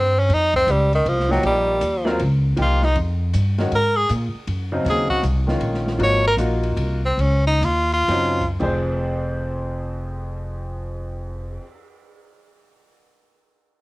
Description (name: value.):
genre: modal jazz.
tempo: 111-158 BPM.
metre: 3/4.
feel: swing 64% on 8ths.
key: F phrygian.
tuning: A4 = 438 Hz.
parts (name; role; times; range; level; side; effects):
edgy tenor saxophone; melody; 0.0-8.5 s; Eb3 to Db5; -19 LUFS; equal; cassette tape.
upright bass; bass; 0.0-11.6 s; F1 to Bb2; -22 LUFS; equal; none.
open jazz drum kit; drums; 0.3-11.7 s; crash cymbal, cymbal swell, hi-hat, kick drum, ride cymbal, snare drum; -34 LUFS; equal; none.
clear baby grand piano; accompaniment; 1.3-11.6 s; F2 to C5; -25 LUFS; equal; cassette tape.
room: light reverb, studio ambience.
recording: home recording on cassette.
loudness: -18 LUFS.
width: side -21 dB against mid.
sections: 0.0-8.6 A section; 8.6-11.9 B section.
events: tenor saxophone solo 0.0-8.6; slowing down 6.0-8.6.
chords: 0.0 F9sus4; 3.7 Ab9sus4; 8.6 Fm.